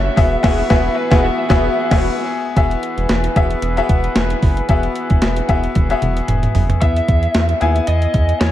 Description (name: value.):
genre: 1980s-style pop.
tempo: 113 BPM.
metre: 4/4.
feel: swing 55% on 16ths.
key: E major.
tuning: A4 = 442 Hz.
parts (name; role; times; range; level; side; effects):
lead guitar through a small cranked amp; melody; 0.0-2.0, 6.8-8.5 s; B4 to E5; -21 LUFS; right 1 dB; overdrive, ping-pong delay.
bright concert grand piano; accompaniment; 0.0-8.5 s; B3 to G#5; -20 LUFS; left 5 dB; none.
clear brass ensemble; sustained chords; 0.0-6.8 s; E3 to B4; -28 LUFS; right 2 dB; none.
round analog bass; bass; 0.0-8.5 s; E1 to E2; -19 LUFS; equal; none.
clean 12-bit digital drum machine; drums; 0.2-8.5 s; crash cymbal, hi-hat, kick drum, snare drum, toms; -16 LUFS; equal; gated reverb.
mellow synth brass; stabs; 0.4-2.1 s; F#4 to B4; -25 LUFS; right 1 dB; chorus, ping-pong delay.
room: little or no reverb.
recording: none.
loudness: -14 LUFS.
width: side -13 dB against mid.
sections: 0.0-2.6 A section; 2.6-6.8 B section; 6.8-8.5 C section.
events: band accent 0.4-2.6; drum fill 5.7-6.8.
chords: 0.2 Eadd9; 6.8 E.